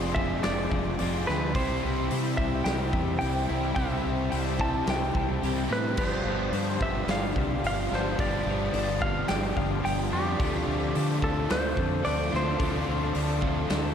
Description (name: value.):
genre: rock, shoegaze and dream pop.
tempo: 109 BPM.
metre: 4/4.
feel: straight.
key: C major.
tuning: A4 = 440 Hz.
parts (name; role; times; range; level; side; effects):
direct-recorded clean electric guitar; melody; 0.0-13.9 s; G4 to A5; -32 LUFS; equal; spring reverb, ping-pong delay.
string machine, violas; sustained chords; 0.0-13.9 s; G4 to D6; -38 LUFS; equal; ensemble chorus.
twelve-string electric guitar; arpeggios; 0.0-13.9 s; F3 to A4; -39 LUFS; left 7 dB; none.
cranked stack guitar; riff; 0.0-13.9 s; G2 to F4; -35 LUFS; left 1 dB; overdrive.
overdriven semi-hollow guitar; riff; 0.0-13.9 s; F2 to F4; -34 LUFS; left 10 dB; ensemble chorus.
overdriven semi-hollow guitar; riff; 0.0-13.9 s; F2 to Ab4; -34 LUFS; right 10 dB; reverse reverb.
fingered electric bass; bass; 0.0-13.9 s; F1 to D3; -31 LUFS; equal; none.
big rock drum kit; drums; 0.2-13.8 s; crash cymbal, hi-hat, kick drum, snare drum; -32 LUFS; equal; none.
room: moderate plate reverb, RT60 2.0 s.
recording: dreamy mix soaked in reverb.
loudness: -25 LUFS.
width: side -8 dB against mid.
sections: 0.0-13.9 A section.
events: none.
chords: 0.0 Fm6; 1.6 Cmaj7; 6.0 G7sus4; 10.4 Dm7.